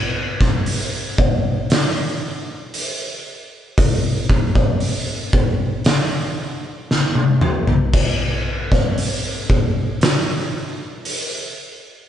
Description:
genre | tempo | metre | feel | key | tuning
metal | 58 BPM | 4/4 | straight | none | none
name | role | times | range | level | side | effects
oversized low-tuned drum kit | drums | 0.4-11.3 s | crash cymbal, hi-hat, kick drum, snare drum, toms | -17 LUFS | equal | none
room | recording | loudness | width
little or no reverb | band playing live in one room, nothing above 10.3 kHz | -17 LUFS | side -10 dB against mid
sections
0.0-12.1 A section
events
drum fill 6.9-7.9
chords
none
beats
0.67 1.71 2.75 | 3.79 4.82 5.86 6.90 | 7.94 8.98 10.02 11.06

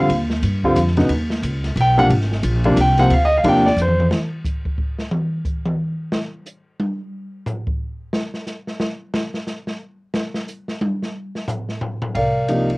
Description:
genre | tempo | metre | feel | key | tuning
jazz piano trio | 179 BPM | 3/4 | swing 62% on 8ths | Eb major, C minor from 4.1 s | A4 = 435 Hz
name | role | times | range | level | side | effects
warm concert grand piano | melody | 0.0-4.1, 12.1-12.8 s | C3 to G5 | -16 LUFS | equal | cassette tape
upright bass | bass | 0.0-4.1, 12.1-12.8 s | Ab1 to G2 | -19 LUFS | equal | none
open jazz drum kit | drums | 0.1-12.8 s | hi-hat, kick drum, ride cymbal, snare drum, toms | -24 LUFS | equal | none
room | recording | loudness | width
little or no reverb | home recording on cassette | -18 LUFS | side -27 dB against mid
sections
0.0-4.1 A section; 4.1-12.2 A section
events
grand piano solo 0.0-4.1; drum fill 3.8-4.1; drum solo 4.1-12.2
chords
0.1 Ebadd9; 1.1 Eb5; 2.1 Abadd9; 3.1 Bbadd9 (rootless); 4.1 N.C.; 12.2 Cm11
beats
| 0.09 0.43 0.77 | 1.10 1.44 1.77 | 2.10 2.44 2.77 | 3.11 3.44 3.78 | 4.11 4.45 4.78 | 5.12 5.45 5.79 | 6.12 6.46 6.79 | 7.13 7.46 7.80 | 8.13 8.47 8.80 | 9.14 9.47 9.81 | 10.14 10.48 10.81 | 11.15 11.48 11.82 | 12.15 12.49

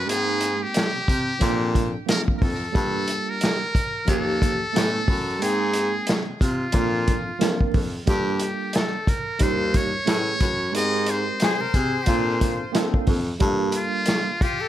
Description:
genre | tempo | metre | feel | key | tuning
hip hop, jazz-hop | 90 BPM | 4/4 | swing 58% on 16ths | G minor | A4 = 437 Hz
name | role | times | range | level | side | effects
trumpet with metal mute | melody | 0.0-14.7 s | F4 to Eb5 | -27 LUFS | equal | plate reverb, digital delay
warm baritone saxophone | bass | 0.0-13.8 s | Eb2 to C3 | -25 LUFS | equal | none
tine electric piano | accompaniment | 0.1-14.3 s | F3 to G#5 | -28 LUFS | right 3 dB | medium stereo tremolo
vintage drum kit | drums | 0.1-14.6 s | hi-hat, kick drum, snare drum | -23 LUFS | equal | none
breathy bright jazz flute | second line | 11.4-14.7 s | F4 to Bb4 | -29 LUFS | left 6 dB | digital delay
room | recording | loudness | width
light reverb | none | -20 LUFS | side -12 dB against mid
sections
0.0-14.7 A section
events
none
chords
0.1 Abmaj9; 1.4 Bbmaj7; 2.7 Gm7; 4.1 Eb9; 4.7 Amaj9; 5.4 Abmaj9; 6.7 Bbmaj7; 8.1 Gm7; 9.4 Eb9; 10.1 Amaj9; 10.7 Abmaj9; 12.1 Bbmaj7; 13.4 Gm7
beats
| 0.08 0.74 1.41 2.08 | 2.74 3.41 4.08 4.74 | 5.41 6.08 6.74 7.41 | 8.08 8.74 9.41 10.08 | 10.74 11.41 12.08 12.74 | 13.41 14.08

